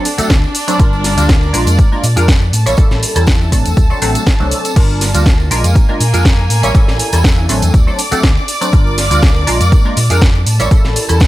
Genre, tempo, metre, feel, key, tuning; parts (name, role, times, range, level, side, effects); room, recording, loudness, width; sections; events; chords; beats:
filtered disco house; 121 BPM; 4/4; swing 54% on 16ths; G minor; A4 = 440 Hz
funky polysynth comp; accompaniment; 0.0-11.3 s; F#3 to D5; -18 LUFS; equal; chorus, phaser, sidechain pumping
clear studio violin section; sustained chords; 0.0-11.3 s; Bb3 to D6; -22 LUFS; equal; sidechain pumping
house drum kit; drums; 0.1-11.3 s; crash cymbal, hi-hat, shaker, snare drum; -18 LUFS; equal; overdrive, sidechain pumping on hats, sidechain pumping on perc, sidechain pumping on cymbals
overdriven fingered electric bass; bass; 0.2-11.3 s; G1 to Bb2; -14 LUFS; equal; tube saturation, sidechain pumping
tambourine; percussion; 0.2-11.3 s; -28 LUFS; right 4 dB; sidechain pumping on perc
electronic kick drum; drums; 0.3-11.3 s; -10 LUFS; equal
little or no reverb; -9 LUFS; side -16 dB against mid
0.0-11.3 A section
0.0 D7; 0.8 Gm7; 1.5 Bb7; 2.5 A7b9; 3.8 D7; 4.8 Gm7; 5.5 Bb7; 6.5 A7b9; 7.7 D7; 8.7 Gm7; 9.5 Bb7; 10.5 A7b9
0.30 | 0.80 1.29 1.79 2.28 | 2.78 3.27 3.77 4.27 | 4.76 5.26 5.75 6.25 | 6.75 7.24 7.74 8.23 | 8.73 9.22 9.72 10.22 | 10.71 11.21